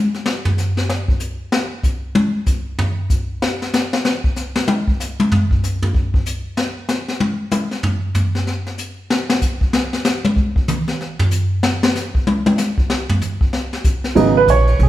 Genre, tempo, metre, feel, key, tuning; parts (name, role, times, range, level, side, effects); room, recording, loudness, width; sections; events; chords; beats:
jazz piano trio; 190 BPM; 4/4; swing 62% on 8ths; G# minor; A4 = 440 Hz
jazz brush drum kit; drums; 0.1-14.9 s; hi-hat, kick drum, ride cymbal, snare drum, toms; -17 LUFS; left 1 dB
warm baby grand piano; melody; 14.2-14.9 s; C#3 to C#5; -12 LUFS; right 5 dB
upright bass; bass; 14.2-14.9 s; G#1 to B1; -14 LUFS; right 1 dB
moderate large studio reverb, RT60 1.2 s; band playing live in one room; -16 LUFS; side -14 dB against mid
0.0-4.0 A section; 4.0-14.2 A section
drum solo 0.0-14.2
0.0 N.C.; 14.2 G#m11
| 0.26 0.58 0.89 1.21 | 1.52 1.84 2.16 2.47 | 2.79 3.10 3.42 3.73 | 4.05 4.37 4.68 5.00 | 5.31 5.63 5.95 6.26 | 6.58 6.89 7.21 7.53 | 7.84 8.16 8.47 8.79 | 9.11 9.42 9.74 10.05 | 10.37 10.69 11.00 11.32 | 11.64 11.95 12.27 12.59 | 12.90 13.22 13.53 13.85 | 14.17 14.48 14.80